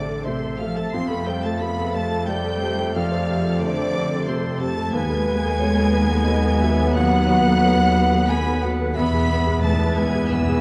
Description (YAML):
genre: cinematic, emotional film score for orchestra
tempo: 90 BPM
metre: 3/4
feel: rubato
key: unclear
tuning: A4 = 438 Hz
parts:
  - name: rich studio violin section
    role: melody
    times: 0.0-10.6 s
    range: C6 to C7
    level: -36 LUFS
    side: equal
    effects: none
  - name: mellow clarinet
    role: second line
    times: 0.0-10.6 s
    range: A4 to G#5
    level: -32 LUFS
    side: equal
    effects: none
  - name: rich studio violin section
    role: second line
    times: 0.0-10.6 s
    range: C5 to C6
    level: -35 LUFS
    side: equal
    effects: none
  - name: silver concert flute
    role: second line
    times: 0.0-10.6 s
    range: C5 to C6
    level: -31 LUFS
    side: equal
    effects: none
  - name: clear studio viola section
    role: accompaniment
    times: 0.0-10.6 s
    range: C3 to B4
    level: -33 LUFS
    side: equal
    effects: none
  - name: felt-muted upright piano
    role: accompaniment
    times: 0.0-10.6 s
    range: D#2 to C5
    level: -29 LUFS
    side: equal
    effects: none
  - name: mellow French horn section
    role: sustained chords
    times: 0.0-10.6 s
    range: C3 to B3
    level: -30 LUFS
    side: equal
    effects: none
  - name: bright studio double bass section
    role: bass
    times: 0.0-10.6 s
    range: A1 to F2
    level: -27 LUFS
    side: equal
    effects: none
  - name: rich studio cello section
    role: bass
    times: 0.0-10.6 s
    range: C3 to C4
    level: -27 LUFS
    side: equal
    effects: none
  - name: timpani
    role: percussion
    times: 9.0-10.6 s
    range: E2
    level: -30 LUFS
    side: equal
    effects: none
room: moderate scoring stage reverb, RT60 1.8 s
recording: dark, warm production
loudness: -21 LUFS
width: mono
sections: 0.0-10.6 A section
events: timpani fill 9.0-10.6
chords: 0.0 Am; 0.9 Fadd9; 5.0 B7/D#; 9.0 E